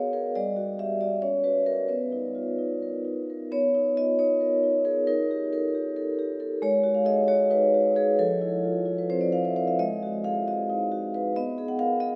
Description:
classical, contemporary piece for solo vibraphone; 268 BPM (eighths); 7/8; rubato; B lydian; A4 = 444 Hz
vibraphone with soft mallets; solo; 0.0-12.2 s; F3 to F#5; -26 LUFS; equal
wet cathedral reverb, RT60 7.1 s; heard from further back in the room; -26 LUFS; mono
0.0-3.5 A section; 3.5-12.2 A section
0.4 G5; 1.2 C#7sus4; 1.9 Bmaj7; 5.1 D#; 6.6 G#m7; 8.2 Fmaj7; 9.8 G#5; 11.4 B6

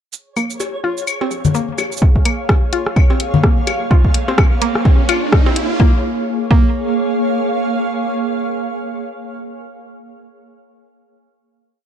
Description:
minimal techno; 127 BPM; 4/4; swing 58% on 16ths; Bb minor; A4 = 439 Hz
garage drum kit; drums; 0.1-5.7 s; cabasa, hi-hat, rim click; -19 LUFS; equal
flickering grainy texture; texture; 0.4-2.0 s; Db5; -31 LUFS; left 3 dB; built-in reverb, sidechain pumping
granular cloud pad; texture; 0.7-9.7 s; Bb3 to F5; -21 LUFS; right 1 dB; built-in reverb, sidechain pumping
mallet-like synth pluck; riff; 0.4-6.7 s; Bb3 to F4; -22 LUFS; equal; chorus, sidechain pumping, tape echo
hollow knocking FM bass; bass; 0.4-2.0 s; Bb1; -36 LUFS; equal; sidechain pumping, high-pass filter
claves, cowbell and congas; percussion; 0.4-5.5 s; -21 LUFS; left 4 dB; digital delay
electronic kick drum; drums; 2.0-6.7 s; -12 LUFS; equal
riser; sound effects; 3.7-5.8 s; -25 LUFS; right 3 dB
light reverb; dark, warm production; -14 LUFS; side -9 dB against mid
0.1-2.0 intro; 2.0-5.8 build; 5.8-9.6 final chord
filter sweep on synth arpeggio sound 0.1-2.0, 2.0-5.8; build-up 2.0-5.8; riser 3.7-5.8
0.1 Bbm

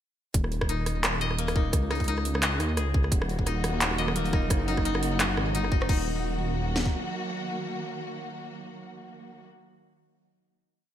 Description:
half-time drum and bass; 173 BPM; 4/4; swing 56% on 16ths, half-time; Eb minor; A4 = 440 Hz
dark detuned saw bass; bass; 0.3-6.9 s; Eb1 to Eb2; -29 LUFS; equal
drum and bass drum kit; drums; 0.3-6.9 s; kick drum, snare drum; -26 LUFS; equal; overdrive, gated reverb
drum and bass drum kit; drums; 0.3-6.0 s; crash cymbal, handclaps, hi-hat, rim click; -30 LUFS; equal; overdrive, gated reverb
koto; arpeggios; 0.7-8.2 s; Bb3 to Eb5; -33 LUFS; left 4 dB; digital delay
warm symphonic string section; sustained chords; 3.1-9.4 s; Db3 to Gb4; -34 LUFS; equal; sidechain pumping
metallic inharmonic drone; texture; 4.0-5.9 s; Eb4; -38 LUFS; right 2 dB; chorus, built-in reverb
light reverb; bright 1980s-style digital production; -25 LUFS; side -10 dB against mid
0.3-5.9 drop; 5.9-8.7 final chord
drop 0.3-5.9
0.3 Eb5; 1.7 Db5; 3.1 Ebm; 4.5 Gb; 5.9 Ebm

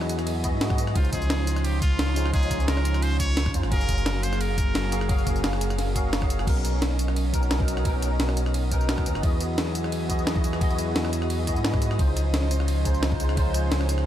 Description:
liquid drum and bass; 174 BPM; 4/4; straight; B major; A4 = 442 Hz
barky tine electric piano; accompaniment; 0.0-14.1 s; F#3 to E#5; -30 LUFS; equal; ensemble chorus, ping-pong delay
airy breathy pad; sustained chords; 0.0-14.1 s; E#3 to B#5; -32 LUFS; equal; chorus, sidechain pumping
smooth gliding synth bass; bass; 0.0-14.1 s; F#1 to G#2; -26 LUFS; equal
breakbeat sampler-style drum kit; drums; 0.0-14.0 s; crash cymbal, hi-hat, ride cymbal, rim click, snare drum, tambourine; -30 LUFS; equal
electronic kick drum; drums; 0.4-13.4 s; -26 LUFS; equal; overdrive
trumpet with straight mute; melody; 1.0-5.4 s; E#4 to C#5; -32 LUFS; equal; tape echo
little or no reverb; -22 LUFS; side -11 dB against mid
0.0-6.5 A section; 6.5-14.1 A section
drop 0.0-6.5, 6.5-14.1
0.0 Emaj9; 1.0 C#maj9; 3.7 F#maj9; 6.5 Bmaj9; 9.2 Emaj9; 12.0 C#maj9

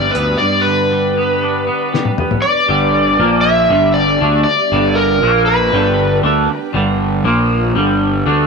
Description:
psychedelic rock; 118 BPM; 4/4; straight; G mixolydian; A4 = 440 Hz
overdriven slide guitar; melody; 0.0-6.2 s; Bb4 to E5; -15 LUFS; left 1 dB; tape echo
ensemble organ-string; sustained chords; 0.0-8.5 s; F3 to B4; -26 LUFS; right 11 dB; ensemble chorus
twangy electric guitar; riff; 0.0-8.5 s; G2 to D4; -15 LUFS; equal; flanger, double-tracked left and right
fuzz fingered electric bass; bass; 0.0-8.5 s; G1 to D2; -19 LUFS; equal; overdrive
cloth-damped thuddy drum kit; drums; 0.1-2.4 s; hi-hat, snare drum, toms; -19 LUFS; left 4 dB
light reverb, small room ambience; 1960s-style stereo; -12 LUFS; side -4 dB against mid
0.0-2.4 A section; 2.4-8.5 B section
drum fill 1.9-2.4
0.0 G; 3.2 Bb5; 3.7 G; 5.2 Bb5; 5.7 G; 7.2 Bb5; 7.7 G

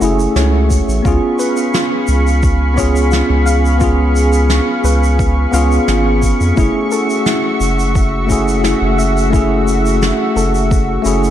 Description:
sunset chillout; 87 BPM; 4/4; straight; F# minor; A4 = 440 Hz
bell-like tine electric piano; accompaniment; 0.0-11.3 s; A3 to G#4; -16 LUFS; equal; auto-pan, low-pass filter, ping-pong delay
lush unison pad; sustained chords; 0.0-11.3 s; F#4 to C#6; -20 LUFS; equal; chorus
soft round pluck; arpeggios; 0.0-11.3 s; E4 to E#5; -24 LUFS; left 4 dB; chorus, ping-pong delay
round analog bass; bass; 0.0-11.3 s; F#1 to E#2; -15 LUFS; equal
shaker and snare drum; drums; 0.0-11.3 s; -23 LUFS; right 1 dB
electronic kick drum; drums; 0.7-10.9 s; -16 LUFS; equal; overdrive
moderate lush hall reverb, RT60 1.8 s, small room reverb; dark, warm production; -11 LUFS; side -11 dB against mid
0.0-11.3 A section
0.0 F#m7; 1.1 C#7; 6.6 F#m7

